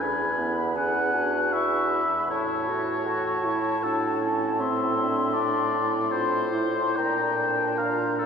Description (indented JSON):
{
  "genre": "classical, slow romantic movement for wind quintet",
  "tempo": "68-80 BPM",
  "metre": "3/4",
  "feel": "rubato",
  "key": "A major",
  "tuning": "A4 = 440 Hz",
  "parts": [
    { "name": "silver concert flute", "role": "melody", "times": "0.0-8.3 s", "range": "G#5 to C#6", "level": "-30 LUFS", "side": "left 4 dB", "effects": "none" },
    { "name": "warm oboe", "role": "second line", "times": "0.0-8.3 s", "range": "A4 to G#5", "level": "-26 LUFS", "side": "left 2 dB", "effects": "none" },
    { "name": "clear clarinet", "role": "accompaniment", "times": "0.0-8.3 s", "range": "B3 to F#4", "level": "-32 LUFS", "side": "right 4 dB", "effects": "none" },
    { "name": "warm French horn", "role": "accompaniment", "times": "0.0-8.3 s", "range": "C4 to A4", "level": "-32 LUFS", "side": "right 1 dB", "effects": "none" },
    { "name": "warm bassoon", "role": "bass", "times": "0.0-8.3 s", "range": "E2 to Bb2", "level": "-30 LUFS", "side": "right 2 dB", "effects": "none" }
  ],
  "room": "wet cathedral reverb, RT60 6.1 s",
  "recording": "recorded in a church or concert hall",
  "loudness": "-22 LUFS",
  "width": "side -6 dB against mid",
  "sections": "0.0-8.3 A section",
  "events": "none",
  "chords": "0.0 E; 2.3 A; 4.6 Am; 7.0 Bb"
}